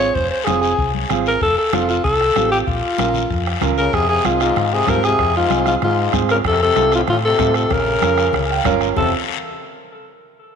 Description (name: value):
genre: latin, cumbia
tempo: 190 BPM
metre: 4/4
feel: straight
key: F minor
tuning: A4 = 439 Hz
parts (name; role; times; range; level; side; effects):
- breathy alto saxophone; melody; 0.0-9.1 s; F4 to Db5; -18 LUFS; left 1 dB; tape echo
- warm upright piano; accompaniment; 0.0-9.1 s; C4 to G5; -23 LUFS; right 10 dB; none
- hollow-body short-scale fingered electric bass; bass; 0.0-9.1 s; F1 to A2; -23 LUFS; equal; none
- guiro; percussion; 0.0-9.0 s; none; -28 LUFS; left 12 dB; none
- bombo; percussion; 0.2-9.0 s; none; -25 LUFS; right 2 dB; none
- congas; percussion; 0.2-9.0 s; none; -29 LUFS; left 12 dB; none
- bright trombone; second line; 3.8-9.1 s; Ab2 to F3; -23 LUFS; left 9 dB; none
room: moderate echo chamber reverb, RT60 2.2 s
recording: 1960s-style stereo with parts hard left and right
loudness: -15 LUFS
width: side -7 dB against mid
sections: 0.0-3.9 A section; 3.9-9.0 B section; 9.0-10.2 C section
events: upright piano fill 8.3-9.0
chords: 0.0 Fm; 1.4 F; 2.7 Bbm; 3.9 Fm; 6.5 F; 7.7 Bbm; 9.0 F